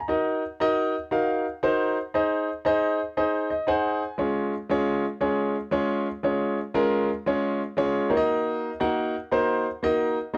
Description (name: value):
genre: soul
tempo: 117 BPM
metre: 4/4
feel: swing 64% on 8ths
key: Db major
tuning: A4 = 445 Hz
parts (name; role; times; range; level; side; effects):
- warm concert grand piano; solo; 0.0-10.4 s; Ab3 to Bb5; -25 LUFS; equal; none
room: moderate studio reverb, RT60 0.5 s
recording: none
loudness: -25 LUFS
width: mono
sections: 0.0-4.2 A section; 4.2-10.4 B section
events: grand piano fill 3.2-4.2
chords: 0.1 Ebm; 2.1 Ab; 4.2 Db; 8.0 Ebm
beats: | 0.08 0.59 1.11 1.62 | 2.14 2.65 3.16 3.68 | 4.19 4.70 5.22 5.73 | 6.24 6.75 7.27 7.78 | 8.29 8.80 9.32 9.83 | 10.34